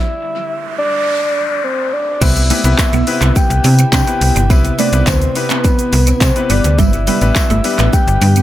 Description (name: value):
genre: dance-pop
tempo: 105 BPM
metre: 4/4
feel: straight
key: C major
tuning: A4 = 440 Hz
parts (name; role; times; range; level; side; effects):
- soft octave-layered synth lead; melody; 0.0-8.4 s; B4 to G5; -18 LUFS; equal; chorus, analog delay
- noise sweep; sound effects; 0.3-2.2 s; none; -23 LUFS; left 1 dB; none
- clear baby grand piano; accompaniment; 2.2-8.4 s; G3 to B4; -20 LUFS; left 4 dB; sidechain pumping, analog delay
- glassy FM pad; sustained chords; 3.0-8.4 s; C3 to B4; -26 LUFS; equal; ensemble chorus, built-in reverb, sidechain pumping
- twelve-string electric guitar; riff; 2.2-8.4 s; G3 to D4; -22 LUFS; right 5 dB; ensemble chorus, analog delay
- slap-like FM bass; bass; 2.2-8.4 s; G1 to C3; -12 LUFS; equal; sidechain pumping
- pop drum kit; drums; 2.2-8.4 s; crash cymbal, handclaps, hi-hat, kick drum, shaker; -15 LUFS; equal; none
- tambourine; percussion; 2.2-8.4 s; none; -30 LUFS; left 9 dB; none
room: light reverb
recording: echo-heavy mix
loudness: -11 LUFS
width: side -13 dB against mid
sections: 0.0-2.2 A section; 2.2-8.4 B section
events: stop 0.0-2.2; noise sweep 0.3-2.2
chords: 0.0 N.C.; 2.2 Cmaj7; 6.5 G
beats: 0.50 1.07 1.64 | 2.21 2.79 3.36 3.93 | 4.50 5.07 5.64 6.21 | 6.79 7.36 7.93